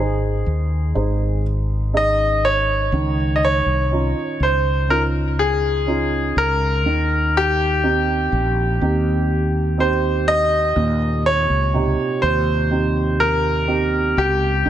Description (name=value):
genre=pop ballad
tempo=61 BPM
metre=4/4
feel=straight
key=unclear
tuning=A4 = 435 Hz
part: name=bright grand piano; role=melody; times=0.0-14.7 s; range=G4 to Eb5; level=-20 LUFS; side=equal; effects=none
part: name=warm baby grand piano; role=accompaniment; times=0.0-14.7 s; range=Bb2 to Eb5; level=-24 LUFS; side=right 4 dB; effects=none
part: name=mellow fretless electric bass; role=bass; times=0.0-14.7 s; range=Ab1 to Eb2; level=-20 LUFS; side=equal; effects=analog chorus
room=light reverb, small room ambience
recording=none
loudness=-16 LUFS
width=side -11 dB against mid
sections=0.0-14.7 A section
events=none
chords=0.0 Ab; 2.9 Dbadd9; 6.9 Eb6